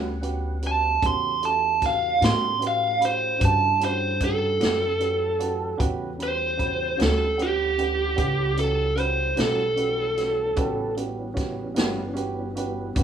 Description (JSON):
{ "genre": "slow blues", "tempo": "50 BPM (dotted quarters)", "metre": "12/8", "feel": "straight", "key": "unclear", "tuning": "A4 = 437 Hz", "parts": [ { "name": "dark upright piano", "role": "accompaniment", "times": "0.0-13.0 s", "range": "B3 to B5", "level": "-31 LUFS", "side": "right 4 dB", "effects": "none" }, { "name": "electric guitar through a small old amp", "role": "accompaniment", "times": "0.0-12.0 s", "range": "A2 to F#4", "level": "-32 LUFS", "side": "left 3 dB", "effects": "harmonic tremolo" }, { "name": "tonewheel organ", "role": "sustained chords", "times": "0.0-13.0 s", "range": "E3 to F#5", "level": "-39 LUFS", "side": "left 1 dB", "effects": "slow rotary speaker, chorus vibrato" }, { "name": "upright bass", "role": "bass", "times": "0.0-13.0 s", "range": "F#1 to A2", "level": "-29 LUFS", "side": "equal", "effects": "none" }, { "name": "vintage drum kit", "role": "drums", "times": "0.2-13.0 s", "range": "hi-hat, kick drum, snare drum", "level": "-28 LUFS", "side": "equal", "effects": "none" }, { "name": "biting lead guitar", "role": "melody", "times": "0.7-10.9 s", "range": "G4 to C6", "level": "-22 LUFS", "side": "right 2 dB", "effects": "overdrive" } ], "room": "small room ambience", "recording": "rough home demo mix", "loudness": "-21 LUFS", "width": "side -8 dB against mid", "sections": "0.0-13.0 A section", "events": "none", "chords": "0.0 A13", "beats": "| 1.02 2.21 3.41 4.60 | 5.80 6.99 8.18 9.38 | 10.57 11.77 12.96" }